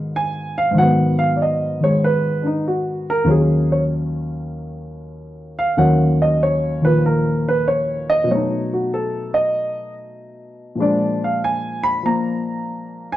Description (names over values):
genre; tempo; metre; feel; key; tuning
jazz; 96 BPM; 4/4; swing 69% on 8ths; Eb minor; A4 = 438 Hz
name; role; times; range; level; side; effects
dark baby grand piano; solo; 0.0-13.2 s; Eb2 to Cb6; -17 LUFS; equal; none
room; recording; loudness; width
moderate large studio reverb, RT60 1.3 s; close, detailed microphones; -16 LUFS; side -14 dB against mid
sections
0.0-13.2 A section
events
none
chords
0.0 Abm7; 3.3 Ebm7; 8.3 B7; 10.8 Bb7